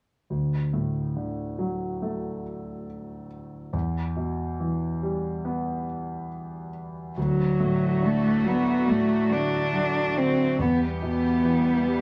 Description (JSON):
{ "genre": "pop", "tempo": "70 BPM", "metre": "4/4", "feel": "straight", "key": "unclear", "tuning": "A4 = 440 Hz", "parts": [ { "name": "warm concert grand piano", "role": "accompaniment", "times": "0.3-12.0 s", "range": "D2 to B3", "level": "-30 LUFS", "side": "equal", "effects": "none" }, { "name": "dark cello", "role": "melody", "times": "7.2-12.0 s", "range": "F#3 to D4", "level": "-25 LUFS", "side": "equal", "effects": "none" }, { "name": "warm studio string section", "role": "sustained chords", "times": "7.2-12.0 s", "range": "D3 to G4", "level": "-33 LUFS", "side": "equal", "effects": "none" } ], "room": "wet studio reverb, RT60 0.5 s", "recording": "none", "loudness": "-26 LUFS", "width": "mono", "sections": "0.3-7.2 A section; 7.2-12.0 B section", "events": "none", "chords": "0.3 D; 3.7 Em; 7.2 D; 10.6 Em" }